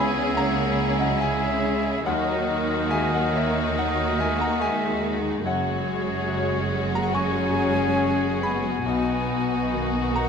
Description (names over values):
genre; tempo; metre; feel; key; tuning
cinematic, emotional film score for orchestra; 71 BPM; 4/4; rubato; F# mixolydian; A4 = 440 Hz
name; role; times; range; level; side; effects
warm symphonic violin section; melody; 0.0-10.3 s; F#4 to G#4; -32 LUFS; left 5 dB; none
bright clarinet; second line; 0.0-10.3 s; F#4 to A#4; -34 LUFS; left 2 dB; none
clear oboe; second line; 0.0-10.3 s; C#5 to E5; -34 LUFS; right 2 dB; none
hollow silver concert flute; second line; 0.0-10.3 s; C#5 to G#5; -32 LUFS; left 2 dB; none
warm symphonic violin section; second line; 0.0-10.3 s; C#4 to E4; -34 LUFS; equal; none
clear grand piano; accompaniment; 0.0-10.3 s; B1 to C#6; -30 LUFS; left 2 dB; none
warm symphonic viola section; accompaniment; 0.0-10.3 s; G#3 to C#4; -30 LUFS; right 4 dB; none
warm French horn section; sustained chords; 0.0-10.3 s; D#3 to A#4; -29 LUFS; left 5 dB; none
rich symphonic cello section; bass; 0.0-10.3 s; F#2 to D#3; -31 LUFS; right 1 dB; none
warm symphonic double bass section; bass; 0.0-10.3 s; F#1 to D#2; -30 LUFS; right 5 dB; none
room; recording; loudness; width
moderate scoring stage reverb, RT60 1.7 s; none; -21 LUFS; side -6 dB against mid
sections
0.0-10.3 A section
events
none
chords
0.0 C#m; 2.1 D#m; 5.4 F#sus2; 8.9 B